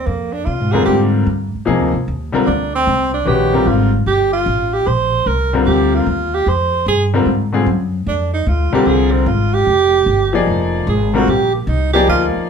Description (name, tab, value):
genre	jazz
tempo	150 BPM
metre	4/4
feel	swing 67% on 8ths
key	F dorian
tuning	A4 = 439 Hz
part	breathy tenor saxophone	second line	0.0-12.3 s	Bb3 to C5	-16 LUFS	right 4 dB	none
part	upright bass	bass	0.0-12.4 s	F1 to C3	-18 LUFS	equal	none
part	bright grand piano	accompaniment	0.7-12.5 s	C3 to D5	-16 LUFS	left 4 dB	none
room	wet club reverb, RT60 0.7 s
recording	heard from further back in the room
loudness	-13 LUFS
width	side -6 dB against mid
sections	0.0-12.5 A section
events	tenor saxophone solo 0.0-12.5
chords	0.1 Fm69; 3.3 Ebadd9; 6.5 Fm69; 9.7 Ebadd9/F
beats	| 0.07 0.47 0.87 1.27 | 1.67 2.07 2.47 2.87 | 3.27 3.67 4.07 4.47 | 4.87 5.27 5.67 6.07 | 6.47 6.87 7.27 7.67 | 8.07 8.47 8.88 9.28 | 9.68 10.08 10.48 10.88 | 11.28 11.68 12.08